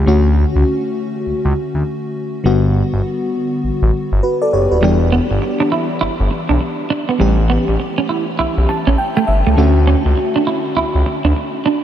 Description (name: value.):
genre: R&B.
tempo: 101 BPM.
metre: 4/4.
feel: swing 62% on 16ths.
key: unclear.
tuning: A4 = 440 Hz.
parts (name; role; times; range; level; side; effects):
FM electric piano with soft pad layer; accompaniment; 0.0-11.8 s; D3 to A5; -18 LUFS; left 2 dB; chorus.
smooth synth bass; bass; 0.0-11.3 s; D#1 to D2; -15 LUFS; equal; none.
clean electric guitar; riff; 4.8-11.8 s; G3 to E4; -18 LUFS; right 4 dB; lush chorus.
room: moderate huge ambient reverb, RT60 7.8 s.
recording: dreamy mix soaked in reverb.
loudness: -14 LUFS.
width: side -10 dB against mid.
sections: 0.0-11.8 A section.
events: FM electric piano fill 8.4-9.6.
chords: 0.1 Dmaj7; 2.4 Gmaj7; 4.8 Em7; 7.2 A7; 9.6 Dmaj7.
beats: | 0.07 0.66 1.26 1.85 | 2.45 3.04 3.63 4.23 | 4.82 5.42 6.01 6.60 | 7.20 7.79 8.39 8.98 | 9.57 10.17 10.76 11.36.